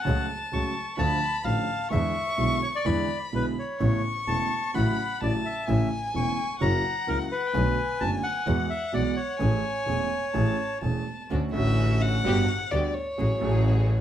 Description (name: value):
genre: tango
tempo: 128 BPM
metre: 4/4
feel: rubato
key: A major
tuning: A4 = 440 Hz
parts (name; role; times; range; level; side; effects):
- bandoneon; melody; 0.0-10.8 s; A#4 to C#6; -29 LUFS; left 2 dB; plate reverb
- dark violin; second line; 0.0-13.9 s; C#5 to C#6; -32 LUFS; left 2 dB; slapback echo
- clear concert grand piano; accompaniment; 0.0-14.0 s; E1 to G#4; -29 LUFS; right 2 dB; none
- clear double bass; bass; 0.1-14.0 s; E1 to E2; -27 LUFS; equal; none
- muted studio string section; stabs; 11.3-14.0 s; A3 to G#4; -34 LUFS; right 1 dB; none
room: moderate studio ambience, RT60 0.5 s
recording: none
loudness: -24 LUFS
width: side -10 dB against mid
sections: 0.0-11.3 A section; 11.3-14.0 B section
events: violin solo 11.3-14.0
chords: 0.1 F#m/C#; 1.0 Dm; 1.9 E7; 3.8 Aadd9; 4.7 F#m7/A; 5.7 A; 6.6 F#7; 7.5 Bm7; 8.5 Eadd9; 9.4 Amaj7; 11.3 Dmaj7; 12.2 Gmaj7; 13.2 F#madd9/A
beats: | 0.06 0.52 0.98 1.45 | 1.92 2.39 2.86 3.33 | 3.81 4.28 4.75 5.22 | 5.68 6.15 6.61 7.08 | 7.54 8.01 8.47 8.94 | 9.40 9.88 10.35 10.82 | 11.30 11.78 12.25 12.72 | 13.18 13.65